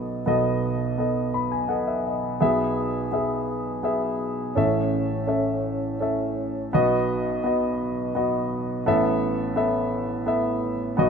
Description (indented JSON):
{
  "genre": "folk",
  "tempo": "84 BPM",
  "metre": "3/4",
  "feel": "straight",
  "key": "unclear",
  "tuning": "A4 = 439 Hz",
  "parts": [
    { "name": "dark baby grand piano", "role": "solo", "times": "0.0-11.1 s", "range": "A1 to B5", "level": "-22 LUFS", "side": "equal", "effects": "none" }
  ],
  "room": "moderate plate reverb, RT60 2.3 s",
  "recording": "minimal, uncompressed stereo recording",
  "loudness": "-22 LUFS",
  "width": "side -6 dB against mid",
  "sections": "0.0-6.7 A section; 6.7-11.1 B section",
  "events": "none",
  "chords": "0.0 B7; 2.4 E/B; 4.6 A; 6.7 B; 8.9 Asus2"
}